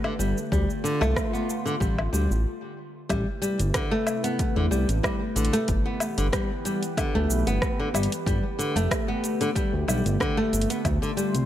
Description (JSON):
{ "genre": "organic downtempo", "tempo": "93 BPM", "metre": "4/4", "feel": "swing 53% on 16ths", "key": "G mixolydian", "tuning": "A4 = 440 Hz", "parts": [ { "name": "warbly tape-like pad", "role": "sustained chords", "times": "0.0-11.5 s", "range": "C3 to C6", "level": "-32 LUFS", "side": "left 1 dB", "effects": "chorus, built-in reverb, sidechain pumping" }, { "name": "flamenco guitar", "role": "arpeggios", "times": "0.0-11.3 s", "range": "D3 to B3", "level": "-27 LUFS", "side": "equal", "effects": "tape echo" }, { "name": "deep house drum kit", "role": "drums", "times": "0.0-11.5 s", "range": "hi-hat, rim click, shaker, woodblock", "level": "-31 LUFS", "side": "equal", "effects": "overdrive, small room reverb" }, { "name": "smooth synth bass", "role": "bass", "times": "0.2-11.5 s", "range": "F1 to E2", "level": "-25 LUFS", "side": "equal", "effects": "sidechain pumping" }, { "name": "electronic kick drum", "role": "drums", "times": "0.5-11.0 s", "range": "none", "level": "-29 LUFS", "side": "equal", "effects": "overdrive, small room reverb" } ], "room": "light reverb", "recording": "none", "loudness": "-23 LUFS", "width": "side -12 dB against mid", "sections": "0.0-3.1 A section; 3.1-11.5 B section", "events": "stop 2.5-3.1", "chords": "0.0 Gadd9; 0.5 Dm7; 3.1 Amadd9; 5.7 Em/G; 8.3 Gadd9; 10.8 Dm7" }